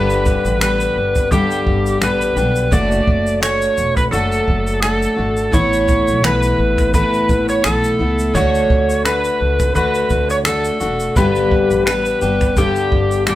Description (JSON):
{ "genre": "acoustic pop", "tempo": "85 BPM", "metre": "4/4", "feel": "swing 55% on 16ths", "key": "unclear", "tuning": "A4 = 439 Hz", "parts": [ { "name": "overdriven slide guitar", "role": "melody", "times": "0.0-13.3 s", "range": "G4 to D5", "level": "-18 LUFS", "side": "equal", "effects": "none" }, { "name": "fingerpicked steel-string acoustic guitar", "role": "accompaniment", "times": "0.0-13.3 s", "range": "G2 to G4", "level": "-19 LUFS", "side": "left 2 dB", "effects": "none" }, { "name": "upright bass", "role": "bass", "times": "0.0-13.3 s", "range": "E1 to D2", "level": "-22 LUFS", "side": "equal", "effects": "none" }, { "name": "jazz brush drum kit", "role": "drums", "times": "0.1-13.3 s", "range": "finger snaps, kick drum, shaker", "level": "-20 LUFS", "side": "equal", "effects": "none" } ], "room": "light reverb", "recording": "band playing live in one room", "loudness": "-14 LUFS", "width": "side -14 dB against mid", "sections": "0.0-13.3 A section", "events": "none", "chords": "0.0 G; 2.7 D; 5.5 Asus2; 8.3 D; 11.2 G" }